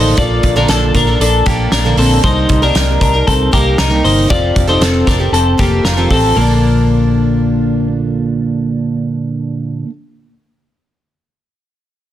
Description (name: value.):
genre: jangly indie pop.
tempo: 116 BPM.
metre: 4/4.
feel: straight.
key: Bb major.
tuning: A4 = 440 Hz.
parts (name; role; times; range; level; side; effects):
picked plugged-in twelve-string acoustic guitar; accompaniment; 0.0-9.9 s; Bb2 to Bb4; -17 LUFS; right 4 dB; plate reverb.
twelve-string electric guitar; arpeggios; 0.0-7.9 s; Bb3 to D5; -14 LUFS; left 4 dB; spring reverb, digital delay, plate reverb.
vintage muted fingered electric bass; bass; 0.0-9.7 s; F1 to C2; -16 LUFS; equal; none.
loose indie drum kit; drums; 0.2-6.2 s; hi-hat, kick drum, snare drum; -17 LUFS; equal; none.
room: light reverb.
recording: dense, heavily limited modern master.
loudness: -10 LUFS.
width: side -12 dB against mid.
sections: 0.0-6.4 A section; 6.4-10.5 B section.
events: none.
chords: 0.0 Bbmaj7; 2.2 Cm7; 4.3 Fadd9; 6.4 Bbmaj7.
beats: | 0.18 0.69 1.21 1.72 | 2.24 2.75 3.27 3.78 | 4.30 4.81 5.33 5.85 | 6.36 6.88 7.39 7.91 | 8.43 8.94 9.46.